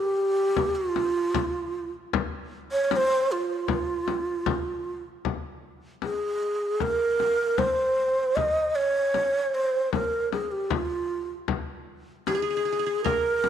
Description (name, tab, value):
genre	Turkish makam ensemble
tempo	77 BPM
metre	4/4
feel	straight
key	F makam nihavent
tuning	A4 = 439 Hz
part	breathy low ney	melody	0.0-13.5 s	F4 to Eb5	-24 LUFS	right 1 dB	none
part	frame drum	percussion	0.6-13.5 s	none	-29 LUFS	left 7 dB	none
part	qanun	second line	12.3-13.5 s	Ab4 to Bb4	-32 LUFS	right 9 dB	none
room	moderate echo chamber reverb, RT60 2.1 s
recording	1960s-style stereo with parts hard left and right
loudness	-24 LUFS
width	side -9 dB against mid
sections	0.0-5.2 A section; 5.2-13.5 B section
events	none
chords	none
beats	0.57 1.35 | 2.13 2.91 3.69 4.47 | 5.25 6.03 6.81 7.59 | 8.37 9.15 9.93 10.71 | 11.49 12.27 13.05